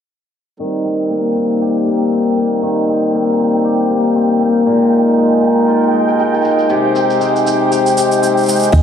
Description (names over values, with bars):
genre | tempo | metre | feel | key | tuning
folktronica | 118 BPM | 4/4 | swing 56% on 16ths | Eb major | A4 = 441 Hz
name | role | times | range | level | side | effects
pedal harmonium | sustained chords | 0.6-8.7 s | C3 to C5 | -18 LUFS | equal | stereo widening
cimbalom | arpeggios | 0.6-8.8 s | Bb2 to G4 | -14 LUFS | left 2 dB | low-pass filter
cabasa | drums | 0.6-8.8 s | none | -25 LUFS | right 4 dB | overdrive
flickering grainy texture | texture | 1.1-8.8 s | G5 | -23 LUFS | right 3 dB | built-in reverb
buzzing kalimba | second line | 8.7-8.8 s | Eb5 | -18 LUFS | left 3 dB | none
round analog bass | bass | 8.7-8.8 s | Eb2 | -9 LUFS | right 1 dB | tube saturation
electronic kick drum | drums | 8.7-8.8 s | none | -15 LUFS | right 1 dB | none
room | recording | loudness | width
light reverb, studio reverb | low-pass filter | -12 LUFS | side -8 dB against mid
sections
0.6-8.7 A section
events
filter sweep on hammered dulcimer 0.6-8.7; filter sweep 0.6-8.7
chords
0.6 Eb6; 4.7 Bb7sus4; 6.7 Abmaj7/C